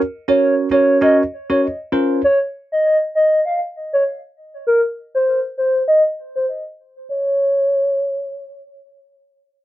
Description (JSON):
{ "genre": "afrobeats", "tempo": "99 BPM", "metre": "4/4", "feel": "swing 58% on 16ths", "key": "unclear", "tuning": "A4 = 440 Hz", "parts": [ { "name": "hollow clarinet-like synth lead", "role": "melody", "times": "0.3-8.9 s", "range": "Bb4 to F5", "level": "-16 LUFS", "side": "equal", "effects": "chorus" }, { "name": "bell-like tine electric piano", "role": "accompaniment", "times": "0.3-2.2 s", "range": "Db4 to Db5", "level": "-16 LUFS", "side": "right 2 dB", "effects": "phaser" } ], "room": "moderate booth ambience, RT60 0.2 s", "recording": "dark, warm production, low-pass filter", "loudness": "-15 LUFS", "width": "side -15 dB against mid", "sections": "0.0-7.1 A section; 7.1-9.5 B section", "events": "filter sweep 0.0-7.1", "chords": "0.0 Gb; 1.9 Bbmadd9; 4.7 N.C." }